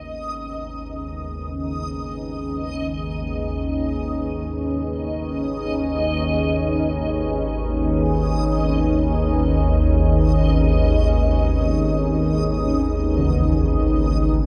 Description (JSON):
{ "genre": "dark ambient drone", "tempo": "free time", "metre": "none", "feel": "none", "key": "G# minor", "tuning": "A4 = 441 Hz", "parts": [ { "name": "deep dark ambient pad", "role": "sustained chords", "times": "0.0-14.5 s", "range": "C#4 to B4", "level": "-26 LUFS", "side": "equal", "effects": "chorus, built-in reverb, shimmer reverb" }, { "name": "organ-like drone", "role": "drone", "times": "0.0-14.5 s", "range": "G#1 to D#2", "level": "-24 LUFS", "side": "equal", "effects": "ensemble chorus, built-in reverb" }, { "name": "backwards swelling texture", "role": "texture", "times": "0.0-14.5 s", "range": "D#5", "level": "-32 LUFS", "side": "equal", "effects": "built-in reverb, ensemble chorus, shimmer reverb" }, { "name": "carillon bells", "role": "arpeggios", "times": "13.2-14.5 s", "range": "C#3", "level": "-26 LUFS", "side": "equal", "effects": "none" } ], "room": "moderate plate reverb, RT60 3.1 s", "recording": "dreamy mix soaked in reverb", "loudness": "-21 LUFS", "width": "mono", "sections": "0.0-14.4 A section", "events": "fade-in on synth drone 0.0-14.4", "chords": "0.0 G#m", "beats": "free time" }